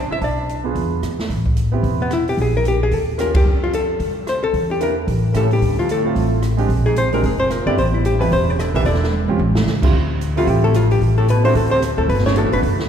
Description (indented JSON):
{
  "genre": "jazz, small-group swing and bop",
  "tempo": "222 BPM",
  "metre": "4/4",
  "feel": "swing 60% on 8ths",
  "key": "A minor",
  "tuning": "A4 = 443 Hz",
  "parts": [
    { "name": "archtop guitar, miked and amplified", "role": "melody", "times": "0.0-12.6 s", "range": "B3 to E5", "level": "-20 LUFS", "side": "left 3 dB", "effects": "none" },
    { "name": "warm baritone saxophone", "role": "second line", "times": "0.0-0.6, 5.4-12.6 s", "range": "E2 to E4", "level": "-26 LUFS", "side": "right 3 dB", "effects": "none" },
    { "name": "upright bass", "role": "bass", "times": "0.0-12.9 s", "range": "E1 to A2", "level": "-19 LUFS", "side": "equal", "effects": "none" },
    { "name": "open jazz drum kit", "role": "drums", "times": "0.2-12.8 s", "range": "crash cymbal, hi-hat, kick drum, ride cymbal, rim click, snare drum, toms", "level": "-23 LUFS", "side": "right 1 dB", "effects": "none" },
    { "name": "clear concert grand piano", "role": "accompaniment", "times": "0.6-12.8 s", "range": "D3 to G#4", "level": "-24 LUFS", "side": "right 5 dB", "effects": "none" }
  ],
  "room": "wet concert hall reverb, RT60 2.2 s",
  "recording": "heard from further back in the room",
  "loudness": "-15 LUFS",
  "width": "side -8 dB against mid",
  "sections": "0.0-1.3 A section; 1.3-9.9 A section; 9.9-12.9 B section",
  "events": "band accent 3.3; drum fill 9.1-9.7",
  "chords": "0.2 Bdim; 0.8 E7b9; 1.3 Am9; 2.4 Gm/Bb; 2.9 D#9; 3.5 F; 4.5 Em7b5; 5.1 A7b9; 5.6 Dm9; 6.7 Bb7sus2; 7.8 Am9; 8.9 Em7; 9.4 A7alt; 9.9 Dm11; 11.0 Am; 11.6 Amadd11/D; 12.1 Gmaj13",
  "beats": "| 0.21 0.48 0.76 1.02 | 1.29 1.56 1.83 2.10 | 2.38 2.65 2.92 3.19 | 3.46 3.73 4.00 4.26 | 4.54 4.80 5.08 5.34 | 5.62 5.88 6.16 6.42 | 6.70 6.96 7.24 7.50 | 7.78 8.04 8.31 8.59 | 8.86 9.12 9.39 9.66 | 9.93 10.20 10.47 10.74 | 11.01 11.28 11.55 11.82 | 12.09 12.36 12.63"
}